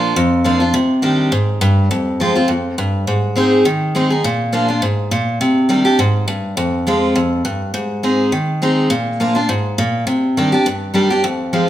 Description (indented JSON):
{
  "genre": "bluegrass",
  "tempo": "206 BPM",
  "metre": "4/4",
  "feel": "swing 53% on 8ths",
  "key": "C minor",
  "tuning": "A4 = 438 Hz",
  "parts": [
    { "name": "picked steel-string acoustic guitar", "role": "solo", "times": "0.0-11.7 s", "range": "F2 to Ab4", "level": "-14 LUFS", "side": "equal", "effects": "none" }
  ],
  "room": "moderate large studio reverb, RT60 1.2 s",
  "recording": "band playing live in one room",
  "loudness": "-14 LUFS",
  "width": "side -12 dB against mid",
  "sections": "0.0-11.7 A section",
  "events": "none",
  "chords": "0.0 Bb; 0.7 Cmadd9; 1.9 Fm; 3.1 Ab; 4.2 Bb; 5.4 Cmadd9; 6.6 Fm; 7.7 Ab; 8.9 Bb; 10.1 Cmadd9"
}